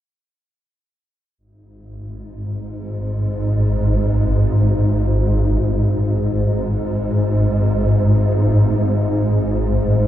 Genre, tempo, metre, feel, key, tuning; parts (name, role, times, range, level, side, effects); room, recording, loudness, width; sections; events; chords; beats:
ambient; free time; A4 = 440 Hz
swarming drone; solo; 2.0-10.1 s; G#1 to G#2; -16 LUFS; equal; built-in reverb, tape echo
moderate spring reverb, RT60 2.9 s; echo-heavy mix; -15 LUFS; side -12 dB against mid
1.4-10.1 A section
free time